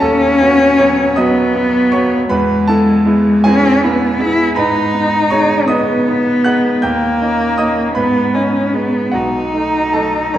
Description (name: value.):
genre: classical, romantic duo for cello and grand piano.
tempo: 53 BPM (dotted quarters).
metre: 6/8.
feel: rubato.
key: E major, G# minor from 4.6 s.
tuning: A4 = 441 Hz.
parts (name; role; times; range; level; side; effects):
rich cello; melody; 0.0-10.4 s; G#3 to E4; -13 LUFS; left 1 dB; none.
bright concert grand piano; accompaniment; 0.0-10.4 s; B1 to G6; -16 LUFS; right 2 dB; none.
room: wet recital hall reverb, RT60 1.6 s.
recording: dark, warm production.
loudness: -11 LUFS.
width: side -12 dB against mid.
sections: 0.0-10.4 A section.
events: none.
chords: 0.0 B7/D#; 2.3 E; 4.6 G#m; 6.8 D#7; 8.0 G#m; 9.1 B7.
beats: | 0.02 1.17 | 2.30 3.44 | 4.56 5.69 | 6.83 7.96 | 9.13 10.35.